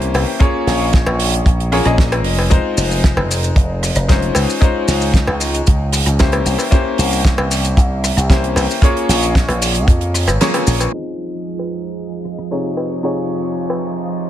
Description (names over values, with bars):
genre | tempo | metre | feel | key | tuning
nu-disco, nu disco | 114 BPM | 4/4 | straight | F minor | A4 = 442 Hz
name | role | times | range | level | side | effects
bright baby grand piano | accompaniment | 0.0-14.3 s | C3 to Eb5 | -20 LUFS | left 2 dB | sidechain pumping, ping-pong delay
slap bass with an envelope filter | bass | 0.0-10.9 s | F1 to F2 | -17 LUFS | equal | none
damped 70s drum kit | drums | 0.0-12.5 s | crash cymbal, hi-hat, rim click, shaker, snare drum | -20 LUFS | right 2 dB | low-pass filter on hats, low-pass filter on cymbals, low-pass filter on snare, low-pass filter on perc, low-pass filter on room
cowbell | percussion | 0.1-13.8 s | none | -22 LUFS | left 1 dB | none
kick drum | drums | 0.4-10.0 s | none | -12 LUFS | equal | none
string machine, full ensemble | sustained chords | 11.1-14.3 s | F3 to Eb5 | -24 LUFS | right 3 dB | phaser, ensemble chorus, sidechain pumping
room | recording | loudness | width
light reverb, small room reverb | low-pass filter, faint mains hum | -13 LUFS | side -12 dB against mid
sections
0.0-10.9 A section; 10.9-14.3 B section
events
kick drops out 10.4-10.9; band accent 10.4; filter sweep on string machine 10.9-14.3; filter sweep 10.9-14.3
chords
0.4 Bbm7; 2.5 Fm7; 4.4 Dbmaj9; 6.5 C7b9; 8.8 Bbm7; 10.9 Fm7